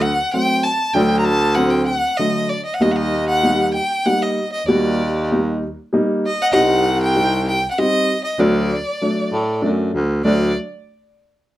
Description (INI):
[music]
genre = klezmer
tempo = 97 BPM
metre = 3/4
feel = straight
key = D phrygian dominant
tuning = A4 = 440 Hz
[part]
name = rich violin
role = melody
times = 0.0-10.5 s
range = D5 to Bb5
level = -20 LUFS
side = equal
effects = none
[part]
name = warm upright piano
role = accompaniment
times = 0.0-10.5 s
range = D3 to F#4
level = -19 LUFS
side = equal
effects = none
[part]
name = breathy baritone saxophone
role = bass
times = 0.0-10.5 s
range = C2 to A2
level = -20 LUFS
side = right 1 dB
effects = none
[sound]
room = wet studio reverb, RT60 0.5 s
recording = dark, warm production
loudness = -16 LUFS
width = side -14 dB against mid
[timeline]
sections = 0.0-10.2 A section; 10.2-11.6 B section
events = none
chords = 0.0 D; 2.8 Eb; 6.5 Cm; 8.4 D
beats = 0.33 | 0.95 1.58 2.20 | 2.82 3.44 4.06 | 4.68 5.30 5.92 | 6.54 7.16 7.78 | 8.40 9.01 9.63 | 10.25